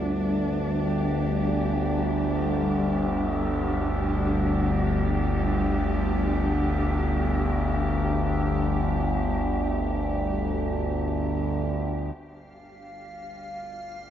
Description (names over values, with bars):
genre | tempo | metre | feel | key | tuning
ambient | free time | none | none | unclear | A4 = 439 Hz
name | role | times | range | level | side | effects
warm studio cello section | sustained chords | 0.0-14.1 s | G3 to G4 | -30 LUFS | equal | none
overtone-sweeping drone | drone | 0.0-14.1 s | G1 to D2 | -25 LUFS | equal | chorus, built-in reverb
icy glass pad | texture | 12.6-14.1 s | F5 | -38 LUFS | equal | chorus, built-in reverb
room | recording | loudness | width
wet spring reverb, RT60 2.6 s | none | -23 LUFS | side -10 dB against mid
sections
0.0-12.2 A section; 12.2-14.1 B section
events
fade-out on cello section 0.0-12.2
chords
0.0 G5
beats
free time